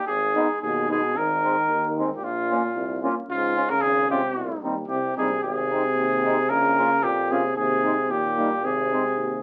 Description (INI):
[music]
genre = alpine folk, alpine dance band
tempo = 112 BPM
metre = 2/4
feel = straight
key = Ab major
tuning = A4 = 441 Hz
[part]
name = warm trumpet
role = melody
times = 0.0-9.4 s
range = F4 to Bb4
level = -25 LUFS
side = equal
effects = none
[part]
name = clear tuba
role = bass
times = 0.1-9.4 s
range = Ab1 to F2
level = -36 LUFS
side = equal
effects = none
[part]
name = mellow accordion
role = accompaniment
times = 0.4-9.0 s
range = G3 to F4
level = -30 LUFS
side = equal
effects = none
[part]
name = warm euphonium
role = second line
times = 0.6-9.4 s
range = Ab2 to Eb3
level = -30 LUFS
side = equal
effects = none
[sound]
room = wet small room reverb, RT60 0.5 s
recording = very old 78 rpm record, vinyl crackle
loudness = -23 LUFS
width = mono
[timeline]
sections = 0.0-1.2 A section; 1.2-9.4 B section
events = none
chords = 0.1 G#m; 1.2 Abadd9; 2.2 Bbm; 3.3 Db; 4.3 Cm; 5.4 Ab; 6.5 Bbm; 7.6 Ab/Eb; 8.1 Eb; 8.6 Ab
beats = | 0.09 0.63 | 1.17 1.70 | 2.23 2.76 | 3.29 3.82 | 4.35 4.88 | 5.42 5.96 | 6.50 7.03 | 7.56 8.09 | 8.63 9.17